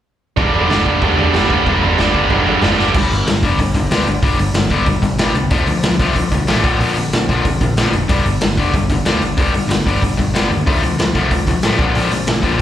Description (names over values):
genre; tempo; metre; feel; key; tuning
punk rock; 186 BPM; 4/4; straight; G minor; A4 = 441 Hz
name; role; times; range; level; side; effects
distorted electric guitar; riff; 0.4-12.6 s; G2 to D4; -16 LUFS; left 4 dB; distortion, slapback echo
tight distorted guitar; riff; 0.4-2.9 s; G2 to G3; -17 LUFS; right 13 dB; distortion
growling picked electric bass; bass; 0.4-12.6 s; F1 to A2; -21 LUFS; right 1 dB; overdrive
raw garage drum kit; drums; 0.4-12.6 s; crash cymbal, hi-hat, kick drum, snare drum, toms; -18 LUFS; right 1 dB; none
room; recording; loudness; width
light reverb, small room ambience; live gig heard through the venue's PA, club reverb; -13 LUFS; side -11 dB against mid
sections
0.4-2.9 A section; 2.9-12.6 B section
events
drum fill 2.8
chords
0.4 Gm; 2.9 G5; 5.5 Dm; 6.6 Bb; 8.1 G5; 10.7 Dm; 11.8 Bb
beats
| 0.37 0.69 1.02 1.34 | 1.66 1.98 2.30 2.62 | 2.95 3.27 3.59 3.91 | 4.23 4.56 4.88 5.20 | 5.52 5.84 6.17 6.49 | 6.81 7.13 7.45 7.77 | 8.10 8.42 8.74 9.06 | 9.38 9.70 10.03 10.35 | 10.67 10.99 11.31 11.63 | 11.95 12.28 12.60